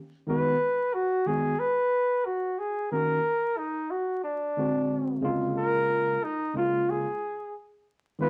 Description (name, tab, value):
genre	hip hop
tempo	91 BPM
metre	4/4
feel	swing 64% on 16ths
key	unclear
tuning	A4 = 440 Hz
part	breathy flugelhorn	melody	0.3-8.3 s	D4 to Cb5	-29 LUFS	equal	none
part	tine electric piano	accompaniment	0.3-8.3 s	Db3 to Gb4	-31 LUFS	equal	none
room	moderate studio reverb, RT60 0.8 s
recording	vinyl crackle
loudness	-27 LUFS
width	mono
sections	0.0-8.3 A section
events	none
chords	0.3 Abm7; 2.9 Ebm7; 4.2 D7#11; 5.6 Db6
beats	| 0.28 0.94 1.60 2.26 | 2.92 3.58 4.24 4.90 | 5.56 6.22 6.88 7.54 | 8.20